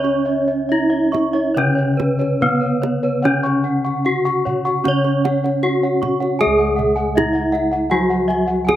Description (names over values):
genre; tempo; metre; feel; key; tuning
Javanese gamelan; 67-79 BPM; 4/4; straight; C# slendro; A4 = 441 Hz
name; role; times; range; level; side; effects
gamelan-type bronze metallophone; melody; 0.0-8.8 s; B3-25c to C#5; -19 LUFS; left 1 dB; none
gamelan-type bronze metallophone; accompaniment; 0.0-8.8 s; C#3 to C#4; -23 LUFS; right 2 dB; none
gamelan-type bossed gongs; arpeggios; 0.0-8.8 s; B4-25c to C#6; -24 LUFS; left 4 dB; slapback echo
gamelan-type bronze metallophone; arpeggios; 0.0-8.8 s; B4-25c to C#6; -26 LUFS; right 6 dB; slapback echo
gamelan-type bossed gongs; bass; 0.0-8.8 s; C#2 to C#5; -25 LUFS; equal; none
kendang; percussion; 0.0-8.8 s; none; -26 LUFS; right 6 dB; none
room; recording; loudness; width
little or no reverb; recorded outdoors, with no room sound; -15 LUFS; side -12 dB against mid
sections
0.0-6.4 A section; 6.4-8.8 B section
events
none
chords
none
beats
0.70 1.56 2.41 | 3.24 4.05 4.85 5.63 | 6.40 7.16 7.92 8.68